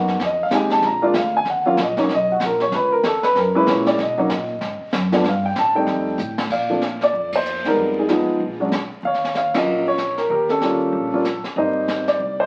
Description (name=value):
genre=jazz piano trio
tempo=190 BPM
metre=4/4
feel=swing 61% on 8ths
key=unclear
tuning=A4 = 440 Hz
part: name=warm upright piano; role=melody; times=0.0-12.5 s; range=E#3 to A#5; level=-20 LUFS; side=equal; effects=none
part: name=upright bass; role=bass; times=0.0-12.5 s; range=Ab1 to B2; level=-32 LUFS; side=equal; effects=none
part: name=jazz brush drum kit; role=drums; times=0.1-12.5 s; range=brushed snare drum, crash cymbal, hi-hat, kick drum, ride cymbal, snare drum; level=-30 LUFS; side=equal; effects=none
room=wet studio reverb, RT60 0.8 s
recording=very old 78 rpm record, vinyl crackle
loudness=-20 LUFS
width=mono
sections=0.0-6.5 A section; 6.5-12.5 B section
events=upright piano solo 0.0-6.5; drum fill 6.2-6.5; band accent 7.3, 9.5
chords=0.2 Fm7; 0.8 A#7; 1.5 D#m7; 2.7 C#m; 3.4 F#7; 4.0 Bmaj7; 5.2 Gsus2; 5.9 F7; 6.5 Bbadd9; 7.8 Fm7b5; 8.4 Bb7(no3); 9.0 Ebm7; 11.6 Abmaj7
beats=| 0.20 0.51 0.83 1.15 | 1.46 1.77 2.09 2.41 | 2.72 3.04 3.35 3.67 | 3.98 4.30 4.61 4.93 | 5.24 5.56 5.87 6.19 | 6.50 6.82 7.14 7.45 | 7.77 8.09 8.40 8.72 | 9.03 9.35 9.67 9.98 | 10.30 10.62 10.93 11.25 | 11.56 11.88 12.20